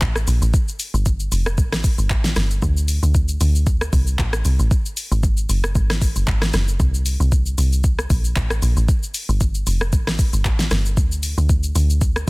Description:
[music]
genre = amapiano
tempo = 115 BPM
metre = 4/4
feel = swing 55% on 16ths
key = unclear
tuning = A4 = 440 Hz
[part]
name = deep log drum bass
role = bass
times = 0.0-12.3 s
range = F1 to D2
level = -18 LUFS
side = equal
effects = none
[part]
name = smooth R&B drum kit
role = drums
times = 0.0-12.3 s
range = handclaps, hi-hat, kick drum, rim click, shaker, snare drum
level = -20 LUFS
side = equal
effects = none
[sound]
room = little or no reverb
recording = dense, heavily limited modern master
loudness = -16 LUFS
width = side -26 dB against mid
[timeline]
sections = 0.0-12.3 A section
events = none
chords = none

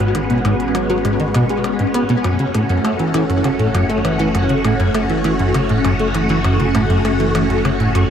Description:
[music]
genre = ambient, sequencer-driven space music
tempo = 100 BPM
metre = 4/4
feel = straight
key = F# minor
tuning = A4 = 437 Hz
[part]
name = phased string machine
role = sustained chords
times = 0.0-8.1 s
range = G#3 to F#4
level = -19 LUFS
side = equal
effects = ensemble chorus, phaser
[part]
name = plucky analog bass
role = riff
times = 0.0-8.0 s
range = F#2 to B3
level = -17 LUFS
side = equal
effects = wide subtle chorus, ping-pong delay
[part]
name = analog drone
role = bass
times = 0.0-8.1 s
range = F#1 to G#1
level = -26 LUFS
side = equal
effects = chorus, tube saturation
[part]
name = electronic hi-hat and percussion blips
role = percussion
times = 0.0-8.1 s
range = none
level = -30 LUFS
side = left 1 dB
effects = ping-pong delay
[part]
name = wind-like tuned noise texture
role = texture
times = 0.0-8.1 s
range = F#4 to F#5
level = -29 LUFS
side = equal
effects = built-in reverb
[sound]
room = moderate huge ambient reverb, RT60 7.8 s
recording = none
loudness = -14 LUFS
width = side -8 dB against mid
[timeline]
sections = 0.0-8.1 A section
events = none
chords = 0.0 G#m; 2.2 F#m

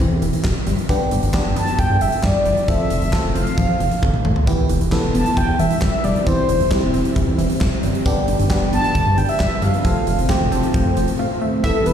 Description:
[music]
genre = synth-pop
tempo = 134 BPM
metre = 4/4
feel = straight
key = unclear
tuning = A4 = 439 Hz
[part]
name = FM electric piano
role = accompaniment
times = 0.0-11.9 s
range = B3 to A5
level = -25 LUFS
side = equal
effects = chorus, phaser
[part]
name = wide unison pluck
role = arpeggios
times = 0.0-11.9 s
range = D3 to C4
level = -25 LUFS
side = left 1 dB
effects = ping-pong delay
[part]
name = fat analog bass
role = bass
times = 0.0-11.9 s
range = E1 to G2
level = -21 LUFS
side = equal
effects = none
[part]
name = huge arena drum kit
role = drums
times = 0.0-11.9 s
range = handclaps, hi-hat, kick drum, snare drum, toms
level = -21 LUFS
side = equal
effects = none
[part]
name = mellow horn-like synth lead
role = melody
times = 1.6-11.9 s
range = A4 to A5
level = -22 LUFS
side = equal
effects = chorus, ping-pong delay
[part]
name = ensemble organ-string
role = sustained chords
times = 4.5-11.9 s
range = E3 to E4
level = -25 LUFS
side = equal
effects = phaser, ensemble chorus
[part]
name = analog pluck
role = second line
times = 11.6-11.8 s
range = E5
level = -24 LUFS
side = right 2 dB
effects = chorus
[sound]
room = moderate lush hall reverb, RT60 1.9 s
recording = played on a big sound system in a bare room, large studio reverb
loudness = -16 LUFS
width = side -9 dB against mid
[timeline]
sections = 0.0-11.6 A section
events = drum fill 4.0-4.5; FM electric piano fill 10.3-11.6; break 11.2-11.6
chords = 0.0 C/E; 0.9 G; 2.7 F; 4.5 Em; 6.3 C/E; 8.1 G; 9.8 F

